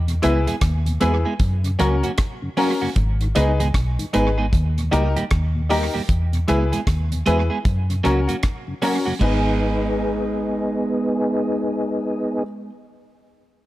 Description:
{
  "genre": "roots reggae",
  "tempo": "77 BPM",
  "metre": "4/4",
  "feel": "swing 62% on 16ths",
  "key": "G# minor",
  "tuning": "A4 = 441 Hz",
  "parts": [
    { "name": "vintage muted fingered electric bass", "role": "bass", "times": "0.0-12.4 s", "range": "G#1 to F#2", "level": "-21 LUFS", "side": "equal", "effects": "none" },
    { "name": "mellow tonewheel organ", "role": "accompaniment", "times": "0.1-12.4 s", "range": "D#2 to G#4", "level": "-26 LUFS", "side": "left 1 dB", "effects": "chorus vibrato, slow rotary speaker" },
    { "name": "deep reggae drum kit", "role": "drums", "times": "0.1-9.4 s", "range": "crash cymbal, hi-hat, kick drum, rim click", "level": "-24 LUFS", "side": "equal", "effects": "tape echo" },
    { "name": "clean electric guitar", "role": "accompaniment", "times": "0.2-12.7 s", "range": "F#3 to G#4", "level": "-25 LUFS", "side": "right 3 dB", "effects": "dub echo" },
    { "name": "warm upright piano", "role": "stabs", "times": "0.2-12.4 s", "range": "C#4 to B4", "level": "-25 LUFS", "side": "left 3 dB", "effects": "none" }
  ],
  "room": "studio ambience",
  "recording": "none",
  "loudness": "-18 LUFS",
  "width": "side -16 dB against mid",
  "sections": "0.0-9.2 A section; 9.2-12.3 B section",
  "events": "none",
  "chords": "0.0 E; 1.4 F#; 3.0 G#m; 4.5 D#; 6.1 E; 7.6 F#; 9.2 G#m"
}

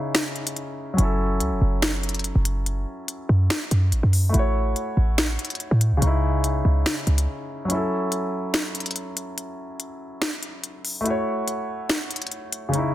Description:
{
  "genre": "hip hop, trap",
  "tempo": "143 BPM",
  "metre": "4/4",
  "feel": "half-time",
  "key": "F# dorian",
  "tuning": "A4 = 441 Hz",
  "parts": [
    { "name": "dark concert grand piano", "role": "accompaniment", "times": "0.0-12.9 s", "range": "C#3 to C#5", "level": "-27 LUFS", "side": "left 1 dB", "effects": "low-pass filter" },
    { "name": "trap drum kit", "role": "drums", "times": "0.1-12.8 s", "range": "finger snaps, hi-hat, snare drum", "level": "-24 LUFS", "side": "left 1 dB", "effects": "none" },
    { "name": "short 808-style bass", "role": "bass", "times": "1.0-7.3 s", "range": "F#1 to A2", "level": "-20 LUFS", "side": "equal", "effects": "none" }
  ],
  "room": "little or no reverb",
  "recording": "dense, heavily limited modern master",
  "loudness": "-21 LUFS",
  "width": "side -14 dB against mid",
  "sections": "0.0-12.9 A section",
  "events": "break 0.0-1.0, 7.3-7.7, 7.7-12.9",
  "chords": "0.0 C#madd9; 1.0 F#m7; 4.3 A6; 6.0 C#madd9; 7.7 F#m7; 11.1 A6"
}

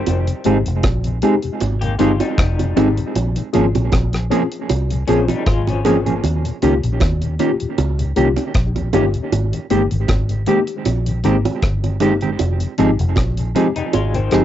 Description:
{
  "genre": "lovers rock reggae",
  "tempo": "78 BPM",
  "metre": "4/4",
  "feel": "swing 54% on 16ths",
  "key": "Ab major",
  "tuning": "A4 = 440 Hz",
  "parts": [
    { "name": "electric guitar through a small old amp", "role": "arpeggios", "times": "0.0-6.2, 13.8-14.4 s", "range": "Eb3 to G4", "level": "-25 LUFS", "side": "left 6 dB", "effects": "tremolo, cassette tape, analog delay" },
    { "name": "vintage muted fingered electric bass", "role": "bass", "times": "0.0-14.4 s", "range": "F1 to Eb2", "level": "-19 LUFS", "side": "equal", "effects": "none" },
    { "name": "deep reggae drum kit", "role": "drums", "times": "0.1-14.4 s", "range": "hi-hat, kick drum, rim click", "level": "-21 LUFS", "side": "equal", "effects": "cassette tape" },
    { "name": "bongos", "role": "percussion", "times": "0.1-14.1 s", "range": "none", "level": "-24 LUFS", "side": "right 8 dB", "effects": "none" },
    { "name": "mellow tonewheel organ", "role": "accompaniment", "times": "0.3-14.4 s", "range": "Eb2 to Ab4", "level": "-28 LUFS", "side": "left 4 dB", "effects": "none" },
    { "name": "mellow tine electric piano", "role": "accompaniment", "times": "0.4-14.4 s", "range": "Ab3 to Ab4", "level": "-20 LUFS", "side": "left 8 dB", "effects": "phaser, cassette tape, plate reverb" },
    { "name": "mellow electric guitar", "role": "stabs", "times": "0.5-14.4 s", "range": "Eb3 to Ab4", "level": "-21 LUFS", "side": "right 6 dB", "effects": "cassette tape, analog delay, plate reverb" }
  ],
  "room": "moderate booth ambience, RT60 0.2 s",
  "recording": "home recording on cassette, nothing above 7.7 kHz",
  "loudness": "-15 LUFS",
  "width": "side -11 dB against mid",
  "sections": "0.0-14.4 A section",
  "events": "none",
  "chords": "0.1 Fm7; 3.2 Bbm7; 6.2 Eb7; 9.3 Abmaj7; 12.4 Fm7"
}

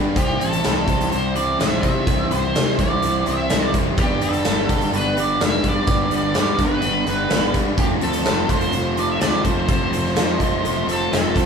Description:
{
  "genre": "classic rock",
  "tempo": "126 BPM",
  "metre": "4/4",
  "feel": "straight",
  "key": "C major",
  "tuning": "A4 = 444 Hz",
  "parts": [
    { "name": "picked plugged-in steel-string acoustic guitar", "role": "accompaniment", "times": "0.0-11.5 s", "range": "G2 to A4", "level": "-31 LUFS", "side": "right 4 dB", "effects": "none" },
    { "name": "biting overdriven guitar", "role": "riff", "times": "0.0-11.5 s", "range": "F2 to C4", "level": "-25 LUFS", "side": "left 6 dB", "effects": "none" },
    { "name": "sludgy distorted guitar", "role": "riff", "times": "0.0-11.5 s", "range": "C3 to C5", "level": "-26 LUFS", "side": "right 8 dB", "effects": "overdrive" },
    { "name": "fuzz fingered electric bass", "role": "bass", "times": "0.0-11.5 s", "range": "F1 to C3", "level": "-27 LUFS", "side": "equal", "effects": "overdrive" },
    { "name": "octave-fuzz lead guitar", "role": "melody", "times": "0.2-11.5 s", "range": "G4 to E5", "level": "-24 LUFS", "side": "right 1 dB", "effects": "wah, distortion" },
    { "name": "huge arena drum kit", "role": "drums", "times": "0.2-11.5 s", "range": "hi-hat, kick drum, snare drum", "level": "-21 LUFS", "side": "equal", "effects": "none" },
    { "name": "crunchy overdriven guitar", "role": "second line", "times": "10.2-11.5 s", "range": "C5 to Eb5", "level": "-29 LUFS", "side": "left 4 dB", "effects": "none" }
  ],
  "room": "moderate large studio reverb, RT60 0.9 s",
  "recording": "band playing live in one room",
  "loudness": "-17 LUFS",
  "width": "side -6 dB against mid",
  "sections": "0.0-11.5 A section",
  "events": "none",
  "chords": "0.2 C; 4.0 G; 7.8 F"
}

